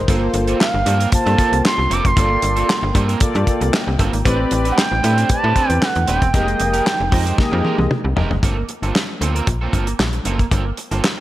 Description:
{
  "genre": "early-eighties boogie funk",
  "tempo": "115 BPM",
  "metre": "4/4",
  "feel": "straight",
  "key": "unclear",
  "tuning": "A4 = 442 Hz",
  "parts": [
    { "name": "mellow synth brass", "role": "accompaniment", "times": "0.0-7.9 s", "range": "Bb3 to Eb5", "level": "-23 LUFS", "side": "left 2 dB", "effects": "chorus" },
    { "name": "chorused pulse-width pad", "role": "sustained chords", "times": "0.0-8.4 s", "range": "F3 to G5", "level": "-29 LUFS", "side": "equal", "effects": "none" },
    { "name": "slap-like FM bass", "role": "bass", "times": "0.0-11.0 s", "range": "Eb1 to A2", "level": "-20 LUFS", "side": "equal", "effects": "none" },
    { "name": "electric guitar at the edge of break-up", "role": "riff", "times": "0.1-11.2 s", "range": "Ab3 to C5", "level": "-26 LUFS", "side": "right 5 dB", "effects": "analog chorus" },
    { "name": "damped 70s drum kit", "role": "drums", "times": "0.1-11.2 s", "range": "handclaps, hi-hat, kick drum, snare drum, toms", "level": "-19 LUFS", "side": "equal", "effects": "gated reverb" },
    { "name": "expressive synth lead", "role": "melody", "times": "0.6-7.9 s", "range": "F5 to D6", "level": "-20 LUFS", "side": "right 2 dB", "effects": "chorus" }
  ],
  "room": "light reverb",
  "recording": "none",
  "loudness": "-15 LUFS",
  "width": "side -15 dB against mid",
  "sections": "0.0-8.4 A section; 8.4-11.2 B section",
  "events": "drum fill 7.4-8.4",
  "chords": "0.1 Gm11; 4.3 Am11; 6.3 Fm11; 8.4 Gm11",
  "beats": "| 0.08 0.60 1.12 1.65 | 2.17 2.69 3.21 3.73 | 4.25 4.78 5.30 5.82 | 6.34 6.86 7.38 7.91 | 8.43 8.95 9.47 9.99 | 10.52 11.04"
}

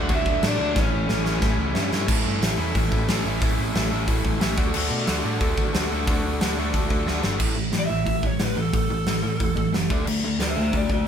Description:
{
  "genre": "punk rock",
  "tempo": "180 BPM",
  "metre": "4/4",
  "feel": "straight",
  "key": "A major",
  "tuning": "A4 = 440 Hz",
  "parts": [
    { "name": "lead guitar through a small cranked amp", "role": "melody", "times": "0.0-1.9, 7.8-11.1 s", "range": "C#4 to F#5", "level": "-28 LUFS", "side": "right 1 dB", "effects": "overdrive" },
    { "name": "distorted electric guitar", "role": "riff", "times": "0.0-11.0 s", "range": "A2 to A4", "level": "-26 LUFS", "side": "equal", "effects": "distortion" },
    { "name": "overdriven picked electric bass", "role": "bass", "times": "0.0-11.1 s", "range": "E1 to D3", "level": "-28 LUFS", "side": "equal", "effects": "none" },
    { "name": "big rock drum kit", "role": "drums", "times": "0.1-11.0 s", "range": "crash cymbal, hi-hat, kick drum, snare drum", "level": "-24 LUFS", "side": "equal", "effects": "none" }
  ],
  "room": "light reverb",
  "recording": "band playing live in one room",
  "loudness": "-20 LUFS",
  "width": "side -8 dB against mid",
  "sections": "0.0-2.1 A section; 2.1-7.4 B section; 7.4-11.1 C section",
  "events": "drum fill 0.8-2.1, 7.1-7.4; lead electric guitar solo 7.4-11.1",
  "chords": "0.0 D; 0.8 A; 4.6 D; 7.4 A5; 9.9 D",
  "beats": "0.10 0.43 | 0.76 1.09 1.43 1.76 | 2.09 2.42 2.75 3.09 | 3.42 3.75 4.08 4.42 | 4.75 5.08 5.41 5.74 | 6.08 6.41 6.74 7.07 | 7.40 7.74 8.07 8.40 | 8.73 9.07 9.40 9.73 | 10.07 10.40 10.73 11.06"
}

